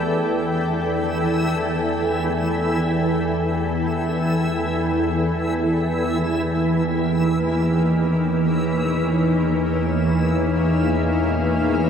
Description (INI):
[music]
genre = dark ambient drone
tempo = free time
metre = none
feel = none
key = E phrygian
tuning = A4 = 438 Hz
[part]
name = granular cloud pad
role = sustained chords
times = 0.0-11.9 s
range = A#3 to G5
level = -24 LUFS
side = left 1 dB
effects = built-in reverb
[part]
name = organ-like drone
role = drone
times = 0.0-11.9 s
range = E2 to E3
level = -21 LUFS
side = equal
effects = ensemble chorus, built-in reverb
[part]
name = backwards swelling texture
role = texture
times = 0.0-11.9 s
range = E3 to E6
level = -24 LUFS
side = right 2 dB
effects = built-in reverb
[sound]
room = wet cathedral reverb, RT60 6.0 s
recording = in a vast, echoing space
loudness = -18 LUFS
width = side -7 dB against mid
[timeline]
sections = 0.0-11.9 A section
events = none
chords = 0.0 Em; 5.8 A#m